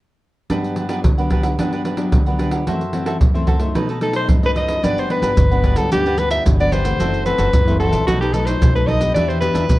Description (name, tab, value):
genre	samba and choro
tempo	111 BPM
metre	4/4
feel	straight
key	G major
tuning	A4 = 440 Hz
part	cavaquinho	accompaniment	0.5-9.6 s	D4 to F#5	-26 LUFS	right 2 dB	plate reverb
part	nylon-string guitar	accompaniment	0.5-9.8 s	F#2 to G4	-23 LUFS	left 2 dB	none
part	surdo, pandeiro and maracas	percussion	0.5-9.8 s	none	-19 LUFS	equal	none
part	bright soprano saxophone	melody	4.0-9.8 s	F#4 to E5	-19 LUFS	left 1 dB	plate reverb, tape echo
part	upright bass	bass	4.8-9.8 s	F#1 to G2	-21 LUFS	equal	none
room	moderate studio ambience, RT60 0.5 s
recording	worn, warbling old tape, cassette tape, warbly pitch drift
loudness	-15 LUFS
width	side -17 dB against mid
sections	0.5-4.8 A section; 4.8-9.8 B section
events	none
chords	0.5 Gmaj7; 2.7 F#m7b5; 3.8 B7; 4.8 Gmaj7; 7.0 F#m7b5; 8.1 B7; 9.2 Em7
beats	| 0.50 1.04 1.58 2.13 | 2.67 3.21 3.75 4.29 | 4.83 5.38 5.92 6.46 | 7.00 7.54 8.08 8.62 | 9.16 9.70